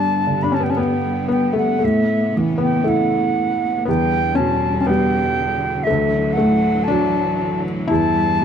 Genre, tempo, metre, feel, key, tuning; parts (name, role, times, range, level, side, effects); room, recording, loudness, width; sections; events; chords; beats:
celtic folk, Celtic slow air; 59 BPM; 4/4; rubato; D major; A4 = 435 Hz
baroque flute; melody; 0.0-8.4 s; E5 to B5; -21 LUFS; right 1 dB
felt-muted upright piano; second line; 0.0-8.4 s; A3 to E4; -22 LUFS; left 4 dB
warm upright piano; accompaniment; 0.0-8.4 s; D2 to E4; -20 LUFS; right 2 dB
rich studio string section; sustained chords; 0.0-8.4 s; E2 to B3; -25 LUFS; equal
studio ambience; dry, close 1970s-style studio recording; -16 LUFS; side -8 dB against mid
0.0-8.4 A section
0.0 G; 1.8 Aadd9; 3.9 Em7; 5.9 Dadd9; 7.9 Em
0.78 | 1.83 2.86 3.88 4.88 | 5.88 6.89 7.90